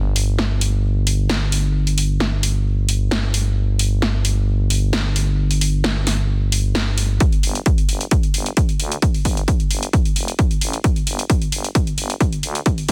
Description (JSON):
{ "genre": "driving peak-time techno", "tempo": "132 BPM", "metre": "4/4", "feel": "straight", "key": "unclear", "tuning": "A4 = 440 Hz", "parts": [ { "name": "growling FM bass", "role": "bass", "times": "0.0-12.9 s", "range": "F1 to D2", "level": "-21 LUFS", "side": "equal", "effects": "sidechain pumping, high-pass filter" }, { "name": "techno drum kit", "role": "drums", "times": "0.2-12.9 s", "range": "hi-hat, snare drum", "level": "-26 LUFS", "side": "equal", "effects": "overdrive, sidechain pumping on hats" }, { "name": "electronic kick drum", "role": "drums", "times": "7.2-12.9 s", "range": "none", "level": "-20 LUFS", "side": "equal", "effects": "overdrive" } ], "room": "little or no reverb", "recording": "dense, heavily limited modern master", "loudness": "-19 LUFS", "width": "mono", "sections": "0.0-7.2 A section; 7.2-12.9 B section", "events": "build-up 7.2-12.9; filter sweep 7.2-12.9", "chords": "none" }